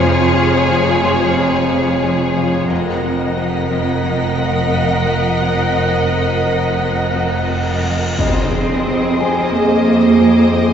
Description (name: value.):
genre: cinematic.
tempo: 89 BPM.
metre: 4/4.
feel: straight.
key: F phrygian.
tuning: A4 = 440 Hz.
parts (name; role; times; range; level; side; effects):
rich symphonic violin section; melody; 0.0-10.7 s; Db5 to Eb5; -23 LUFS; left 2 dB; none.
rich symphonic violin section; second line; 0.0-10.7 s; Ab4 to C5; -22 LUFS; left 1 dB; none.
warm symphonic viola section; accompaniment; 0.0-10.7 s; F3 to Gb5; -22 LUFS; equal; none.
Celtic harp; riff; 0.0-10.7 s; F2 to F3; -21 LUFS; left 3 dB; none.
dark studio double bass section; bass; 0.0-10.7 s; F1 to F2; -21 LUFS; right 4 dB; none.
rich symphonic cello section; bass; 0.0-10.7 s; F2 to C4; -19 LUFS; right 2 dB; none.
felt-muted upright piano; texture; 0.0-10.7 s; F5 to C6; -29 LUFS; equal; none.
warm symphonic violin section; texture; 0.0-10.7 s; C6 to B6; -31 LUFS; left 2 dB; none.
cymbal swell and impact; sound effects; 7.2-10.7 s; none; -24 LUFS; equal; none.
dark French horn section; sustained chords; 8.2-9.8 s; Ab4 to Eb5; -23 LUFS; left 3 dB; none.
room: wet scoring stage reverb, RT60 2.0 s.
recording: recorded in a church or concert hall, nothing above 7.8 kHz.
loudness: -13 LUFS.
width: side -8 dB against mid.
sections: 0.0-8.2 A section; 8.2-10.7 B section.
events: cymbal swell 7.2-8.2; impact 8.2-10.7.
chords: 0.0 Db/F; 2.7 Ebmadd9/F; 8.2 Fm7.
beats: | 0.04 0.71 1.37 2.04 | 2.71 3.37 4.04 4.72 | 5.41 6.11 6.81 7.50 | 8.19 8.87 9.55 10.22.